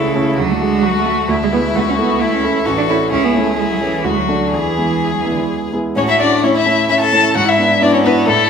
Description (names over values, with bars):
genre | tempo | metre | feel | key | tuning
quick classical-period movement for piano quartet | 131 BPM | 3/4 | rubato | A major | A4 = 439 Hz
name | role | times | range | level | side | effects
dark violin | melody | 0.0-8.5 s | D4 to A5 | -17 LUFS | left 5 dB | none
clear violin | second line | 0.0-8.5 s | A3 to A4 | -22 LUFS | left 3 dB | none
warm cello | second line | 0.0-8.5 s | C#3 to F#4 | -19 LUFS | right 6 dB | none
warm grand piano | accompaniment | 0.0-8.5 s | A1 to B4 | -18 LUFS | right 1 dB | none
room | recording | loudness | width
wet recital hall reverb, RT60 1.4 s | minimal, uncompressed stereo recording | -13 LUFS | side -6 dB against mid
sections
0.0-6.0 A section; 6.0-8.5 B section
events
none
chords
0.4 D; 1.3 E7/D; 1.7 A/C#; 2.7 A; 3.1 A/C#; 4.0 D; 4.5 E; 6.0 A; 7.4 E7/G#